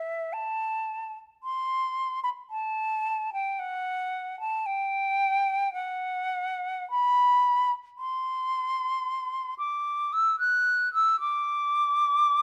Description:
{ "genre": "classical, baroque-style fantasia for unaccompanied flute", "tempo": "55 BPM", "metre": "3/4", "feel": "rubato", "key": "unclear", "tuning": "A4 = 439 Hz", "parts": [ { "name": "concert flute", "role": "solo", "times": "0.0-12.4 s", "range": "E5 to F#6", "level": "-27 LUFS", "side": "equal", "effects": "none" } ], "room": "light reverb", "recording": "none", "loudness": "-27 LUFS", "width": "mono", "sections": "0.0-12.4 A section", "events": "none", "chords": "none", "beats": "0.30 | 1.42 2.51 3.60 | 4.67 5.74 6.91 | 8.00 9.05 10.13 | 11.21 12.30" }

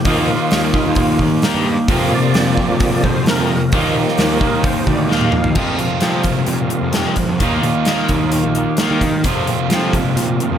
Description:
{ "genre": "classic rock", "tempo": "131 BPM", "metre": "4/4", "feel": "straight", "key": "unclear", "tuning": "A4 = 441 Hz", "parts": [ { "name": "tonewheel organ", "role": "sustained chords", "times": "0.0-10.6 s", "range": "C3 to F5", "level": "-23 LUFS", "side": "equal", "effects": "slow rotary speaker, overdrive, chorus vibrato" }, { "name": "crunchy overdriven guitar", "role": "riff", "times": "0.0-10.6 s", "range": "F2 to F4", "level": "-20 LUFS", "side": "right 8 dB", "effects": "none" }, { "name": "distorted electric guitar", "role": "riff", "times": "0.0-10.6 s", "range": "F2 to Eb4", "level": "-20 LUFS", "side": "left 8 dB", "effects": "distortion" }, { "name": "gated 80s drum kit", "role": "drums", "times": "0.0-10.5 s", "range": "crash cymbal, hi-hat, kick drum, snare drum, toms", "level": "-19 LUFS", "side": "equal", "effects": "none" }, { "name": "fuzz picked electric bass", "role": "bass", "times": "0.1-10.6 s", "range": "Bb1 to F3", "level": "-21 LUFS", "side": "equal", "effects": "overdrive" } ], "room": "light reverb", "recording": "none", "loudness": "-14 LUFS", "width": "side -9 dB against mid", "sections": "0.0-5.6 A section; 5.6-10.6 B section", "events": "tonewheel organ solo 0.0-5.6; drum fill 5.1-5.6", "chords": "0.1 Ebsus2; 1.9 Fsus4; 3.7 Ebsus2; 5.6 Fsus4; 7.4 Ebsus2; 9.2 Fsus4", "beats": "| 0.07 0.53 0.98 1.44 | 1.90 2.36 2.81 3.27 | 3.73 4.19 4.65 5.10 | 5.56 6.02 6.48 6.94 | 7.40 7.86 8.32 8.78 | 9.24 9.70 10.16" }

